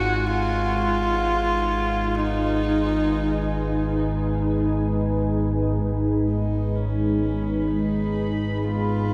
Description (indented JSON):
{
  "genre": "dark ambient drone",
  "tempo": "free time",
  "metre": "none",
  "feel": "none",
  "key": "G# minor",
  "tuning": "A4 = 441 Hz",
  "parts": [
    { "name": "clear horsehead fiddle", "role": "melody", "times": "0.0-9.1 s", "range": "C#4 to F#4", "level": "-28 LUFS", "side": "equal", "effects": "tape echo" },
    { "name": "deep dark ambient pad", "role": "sustained chords", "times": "1.0-9.1 s", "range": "G#3 to B4", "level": "-28 LUFS", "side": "equal", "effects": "chorus, built-in reverb" },
    { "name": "analog drone", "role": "drone", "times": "0.0-9.1 s", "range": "G#1 to G#2", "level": "-28 LUFS", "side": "equal", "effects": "lush chorus" },
    { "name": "bubbling stepped-filter texture", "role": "texture", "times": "0.0-9.1 s", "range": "G#5 to B5", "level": "-43 LUFS", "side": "equal", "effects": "chorus, built-in reverb" }
  ],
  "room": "wet huge ambient reverb, RT60 7.8 s",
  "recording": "none",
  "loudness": "-23 LUFS",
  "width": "mono",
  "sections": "0.0-5.8 A section; 5.8-9.1 B section",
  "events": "fade-in on horsehead fiddle 5.8-9.1",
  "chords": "0.0 G#m"
}